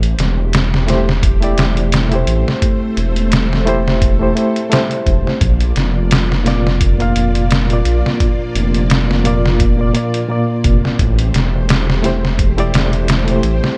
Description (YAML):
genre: trip hop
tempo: 86 BPM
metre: 4/4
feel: swing 55% on 16ths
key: A phrygian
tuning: A4 = 442 Hz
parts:
  - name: string machine, cellos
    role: sustained chords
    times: 0.0-13.8 s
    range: A3 to D5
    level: -25 LUFS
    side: equal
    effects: ensemble chorus, vintage 12-bit sampler grit
  - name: dark detuned saw bass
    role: bass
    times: 0.0-13.6 s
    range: E1 to Bb1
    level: -18 LUFS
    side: equal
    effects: none
  - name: trip hop sampler-style drum kit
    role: drums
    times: 0.0-13.8 s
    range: hi-hat, kick drum, snare drum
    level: -19 LUFS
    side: equal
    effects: vintage 12-bit sampler grit
  - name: barky reed electric piano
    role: accompaniment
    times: 0.9-13.8 s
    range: Bb2 to F5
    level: -21 LUFS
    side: equal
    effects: overdrive, fast tremolo, low-pass filter
room: digital ambience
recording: none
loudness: -15 LUFS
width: mono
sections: 0.0-13.8 A section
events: none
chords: 0.0 Am7; 5.4 Bb; 11.0 Am7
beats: 0.53 1.23 1.93 | 2.62 3.32 4.02 4.72 | 5.41 6.11 6.81 7.51 | 8.20 8.90 9.60 10.30 | 10.99 11.69 12.39 13.09